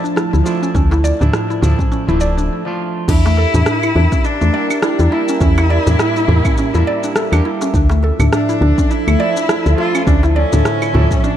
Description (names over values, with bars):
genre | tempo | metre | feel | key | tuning
organic downtempo | 103 BPM | 4/4 | swing 58% on 16ths | unclear | A4 = 440 Hz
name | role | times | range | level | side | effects
semi-hollow electric guitar | accompaniment | 0.0-11.4 s | D3 to G4 | -24 LUFS | right 3 dB | wide subtle chorus, sidechain pumping, ping-pong delay
warm analog pad | sustained chords | 0.0-11.4 s | F3 to A5 | -25 LUFS | right 1 dB | chorus, sidechain pumping
mallet-like synth pluck | arpeggios | 0.0-11.4 s | A3 to D5 | -20 LUFS | equal | chorus, ping-pong delay
afro-pop drum kit | drums | 0.1-11.4 s | claves, crash cymbal, rim click, shaker | -23 LUFS | equal | studio reverb
woody FM bass | bass | 0.3-11.1 s | D1 to E2 | -14 LUFS | equal | none
darbuka | percussion | 0.5-11.2 s | none | -22 LUFS | right 1 dB | none
electronic kick drum | drums | 0.7-11.2 s | none | -16 LUFS | equal | studio reverb
rich cello | melody | 3.1-11.4 s | C#4 to F4 | -20 LUFS | equal | ping-pong delay
room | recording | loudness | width
light reverb | dark, warm production | -12 LUFS | side -10 dB against mid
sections
0.0-3.1 A section; 3.1-11.4 B section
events
break 2.5-3.1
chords
0.0 Dmadd9; 3.1 Em7b5; 7.7 Dmadd9